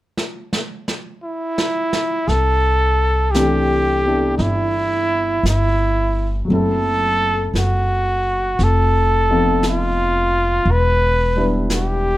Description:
jazz ballad; 57 BPM; 4/4; swing 67% on 8ths; C major; A4 = 440 Hz
jazz brush drum kit; drums; 0.2-12.2 s; brushed snare drum, hi-hat, snare drum; -26 LUFS; right 1 dB
warm trumpet; melody; 1.2-12.2 s; Eb4 to B4; -18 LUFS; equal; plate reverb
upright bass; bass; 2.3-12.2 s; E1 to C2; -19 LUFS; equal
warm grand piano; accompaniment; 3.4-12.2 s; E3 to B4; -22 LUFS; left 1 dB
light reverb; -15 LUFS; side -16 dB against mid
0.0-2.3 A section; 2.3-12.2 B section
drum fill 0.2-2.3
0.0 N.C.; 2.3 C69; 6.5 F#m7b5; 8.6 F7#11; 10.7 Em7
0.18 1.23 | 2.28 3.34 4.40 5.45 | 6.50 7.54 8.59 9.63 | 10.67 11.71

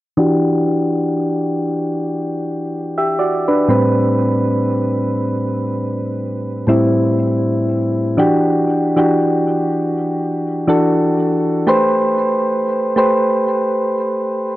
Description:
R&B; 60 BPM; 4/4; swing 58% on 16ths; E minor; A4 = 442 Hz
soft electric-piano-like synth keys; solo; 0.2-14.6 s; A2 to E5; -14 LUFS; equal; chorus, low-pass filter, tape echo
little or no reverb; dry, gritty hardware recording, cassette tape; -15 LUFS; side -16 dB against mid
0.2-8.2 A section; 8.2-14.6 B section
filter sweep on synth keys 0.2-8.2
0.2 Em9; 3.7 Am9; 8.2 Em9; 11.7 Am9
| 0.18 1.18 2.18 3.18 | 4.18 5.18 6.18 7.18 | 8.18 9.18 10.18 11.18 | 12.18 13.18 14.18

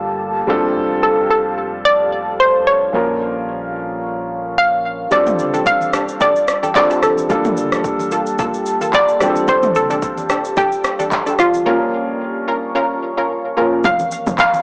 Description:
amapiano; 110 BPM; 4/4; swing 55% on 16ths; F major; A4 = 439 Hz
warm grand piano; accompaniment; 0.0-13.9 s; F3 to Bb4; -23 LUFS; equal
deep dark ambient pad; sustained chords; 0.0-14.6 s; F3 to Db6; -28 LUFS; equal; chorus, built-in reverb, sidechain pumping
organ-like FM bass; bass; 0.0-5.1 s; F1 to Bb1; -37 LUFS; equal; tube saturation
hollow square pluck; melody; 1.0-14.6 s; F4 to F5; -18 LUFS; equal; chorus, tape echo
punchy chord stab; stabs; 5.1-13.8 s; Bb3 to Bb4; -25 LUFS; equal; chorus, tape echo
deep house drum kit; drums; 5.1-14.6 s; handclaps, kick drum, rim click, shaker, toms; -24 LUFS; equal
congas; percussion; 5.3-14.6 s; -37 LUFS; equal
tight log drum bass; bass; 13.8-14.6 s; F1; -25 LUFS; equal; transformer saturation
light reverb; blown-out, overdriven recording, overdrive, small speaker sound; -17 LUFS; mono
0.0-13.8 A section
break 11.7-13.8
0.5 F69; 2.9 Bbm; 5.1 F69; 7.3 Gm9; 9.2 F69; 11.7 Bbm; 13.8 F69
0.21 | 0.75 1.30 1.84 2.39 | 2.94 3.48 4.03 4.57 | 5.12 5.66 6.21 6.75 | 7.30 7.84 8.39 8.94 | 9.48 10.03 10.57 11.12 | 11.66 12.21 12.75 13.30 | 13.84 14.39

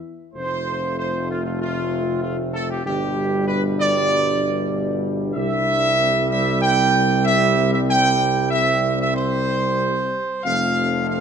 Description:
classical; 95 BPM; 4/4; straight; C major; A4 = 440 Hz
dark trumpet section; melody; 0.0-11.2 s; F4 to G5; -20 LUFS; right 2 dB
clear trombone section; sustained chords; 0.3-11.2 s; B2 to A3; -27 LUFS; right 4 dB
warm tuba; bass; 0.3-11.2 s; F1 to C2; -25 LUFS; right 3 dB
mellow French horn section; sustained chords; 0.4-11.2 s; G3 to F4; -27 LUFS; left 9 dB
moderate scoring stage reverb, RT60 1.5 s; -18 LUFS; side -7 dB against mid
0.0-11.2 A section
0.4 F; 2.9 G; 5.4 C; 10.4 F
| 0.35 0.98 1.61 2.23 | 2.85 3.48 4.11 4.73 | 5.36 5.99 6.61 7.25 | 7.88 8.52 9.15 9.79 | 10.45 11.09

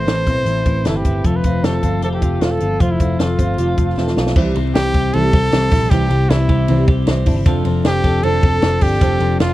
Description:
jangly indie pop; 155 BPM; 4/4; straight; C major from 4.4 s; A4 = 440 Hz
clear trumpet; melody; 0.0-9.5 s; E4 to C5; -21 LUFS; equal
fingerpicked steel-string acoustic guitar; accompaniment; 0.0-9.5 s; A2 to B4; -23 LUFS; right 4 dB
twelve-string electric guitar; arpeggios; 0.0-9.5 s; A2 to B4; -21 LUFS; left 4 dB
vintage muted picked electric bass; bass; 0.0-9.5 s; E1 to C2; -19 LUFS; equal
compact cocktail drum kit; drums; 0.1-9.5 s; crash cymbal, hi-hat, kick drum, ride cymbal, snare drum; -17 LUFS; equal
little or no reverb; dry, close 1970s-style studio recording, vinyl crackle; -13 LUFS; side -16 dB against mid
0.0-4.4 A section; 4.4-9.5 B section
drum fill 4.0-4.4
0.0 Amadd9; 1.2 F; 4.4 C; 7.5 F6
0.07 0.46 0.85 | 1.24 1.63 2.02 2.41 | 2.80 3.19 3.58 3.97 | 4.36 4.75 5.14 5.52 | 5.91 6.30 6.69 7.07 | 7.46 7.85 8.24 8.62 | 9.01 9.40

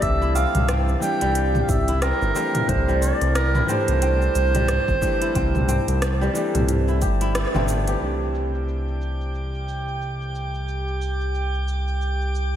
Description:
organic downtempo; 90 BPM; 4/4; swing 59% on 16ths; C major; A4 = 443 Hz
mellow clarinet; melody; 0.0-7.4 s; Bb4 to G5; -25 LUFS; right 2 dB; diffuse ambient delay
felt-muted upright piano; accompaniment; 0.0-12.6 s; E3 to G4; -29 LUFS; left 1 dB; sidechain pumping, tape echo
kora; arpeggios; 0.0-9.3 s; G3 to G4; -28 LUFS; left 1 dB; tape echo
smooth gliding synth bass; bass; 0.0-12.6 s; G1 to C2; -23 LUFS; equal
electronic kick drum; drums; 0.0-7.2 s; -25 LUFS; equal
organic electronic drum kit; drums; 0.0-12.5 s; hi-hat, rim click, shaker, toms; -27 LUFS; equal; low-pass filter on hats, low-pass filter on perc, low-pass filter on snare, low-pass filter on toms, low-pass filter on room
drifting glass-harmonics texture; texture; 8.5-12.6 s; G4 to G5; -31 LUFS; right 2 dB; chorus, built-in reverb
moderate lush hall reverb, RT60 2.9 s; dreamy mix soaked in reverb; -20 LUFS; side -10 dB against mid
0.0-8.0 A section; 8.0-12.6 B section
band accent 7.4-7.7; filter sweep on drum 8.0-12.6
0.0 Cadd9
| 0.02 0.68 1.35 2.02 | 2.68 3.35 4.02 4.68 | 5.35 6.02 6.68 7.35 | 8.02 8.68 9.35 10.02 | 10.68 11.35 12.02

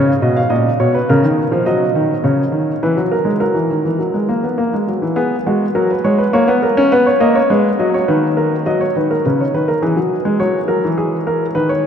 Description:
classical, baroque-style two-part invention for grand piano; 103 BPM; 3/4; straight; B major; A4 = 440 Hz
warm baby grand piano; solo; 0.0-11.9 s; A#2 to E#5; -13 LUFS; equal
wet cathedral reverb, RT60 6.0 s; in a vast, echoing space; -13 LUFS; side -8 dB against mid
0.0-5.2 A section; 5.2-8.7 B section; 8.7-11.9 A section
0.0 C#; 1.1 C#69; 1.7 D#m; 2.8 Eadd9; 3.4 F#; 5.2 B5; 6.3 A#m; 6.9 B; 8.1 B/D#; 8.7 C#13sus4; 9.8 Eadd9; 10.4 F#
0.51 1.08 | 1.67 2.25 2.83 | 3.41 4.00 4.59 | 5.18 5.76 6.34 | 6.92 7.50 8.08 | 8.66 9.25 9.83 | 10.41 10.98 11.56

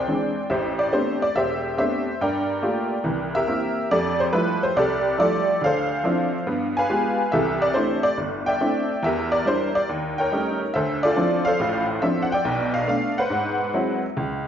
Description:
solo jazz; 140 BPM; 4/4; swing 68% on 8ths; A minor; A4 = 440 Hz
honky-tonk upright piano; solo; 0.0-14.5 s; E1 to Ab5; -20 LUFS; equal
wet recital hall reverb, RT60 1.6 s; recorded in a church or concert hall, nothing above 7.5 kHz; -20 LUFS; side -9 dB against mid
0.5-14.2 A section
0.5 Am11; 2.2 Gm9; 3.1 C7; 3.9 Fmaj9; 5.6 Dm9; 6.5 G7b9; 7.3 C69; 9.0 Em7b5; 9.9 D#7#11; 10.7 Dm9; 12.5 Bm7b5; 13.3 G#7alt
0.07 | 0.50 0.93 1.35 1.78 | 2.21 2.63 3.06 3.48 | 3.91 4.34 4.77 5.19 | 5.62 6.05 6.47 6.90 | 7.33 7.75 8.18 8.61 | 9.04 9.46 9.89 10.32 | 10.74 11.17 11.60 12.03 | 12.45 12.88 13.31 13.74 | 14.16

